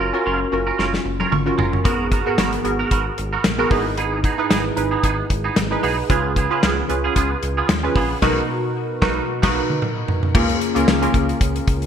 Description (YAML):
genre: 1980s-style pop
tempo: 113 BPM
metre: 4/4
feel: swing 55% on 16ths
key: Db mixolydian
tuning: A4 = 436 Hz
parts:
  - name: glassy digital keys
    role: accompaniment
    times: 0.0-11.9 s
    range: Ab2 to Db6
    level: -21 LUFS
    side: equal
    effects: chorus
  - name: twangy electric guitar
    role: riff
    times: 0.0-9.6 s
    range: Bb3 to Bb4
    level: -24 LUFS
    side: right 5 dB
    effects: ensemble chorus, ping-pong delay
  - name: smooth synth bass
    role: bass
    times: 0.0-11.9 s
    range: Gb1 to Eb2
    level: -26 LUFS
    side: equal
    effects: none
  - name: modern studio drum kit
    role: drums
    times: 0.8-11.9 s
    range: crash cymbal, hi-hat, kick drum, snare drum, tambourine, toms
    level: -20 LUFS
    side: left 1 dB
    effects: gated reverb
room: moderate plate reverb, RT60 1.5 s, small room ambience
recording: bright 1980s-style digital production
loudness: -17 LUFS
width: side -8 dB against mid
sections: 0.0-10.3 A section; 10.3-11.9 B section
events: drum fill 0.8-1.9, 9.3-10.3; synth keys fill 1.1-1.9; band accent 8.2-10.3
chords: 0.0 Gbmaj7; 1.9 Abm9; 3.7 Emaj7/G#; 6.1 Db7; 8.2 Cbmaj7; 10.3 Db6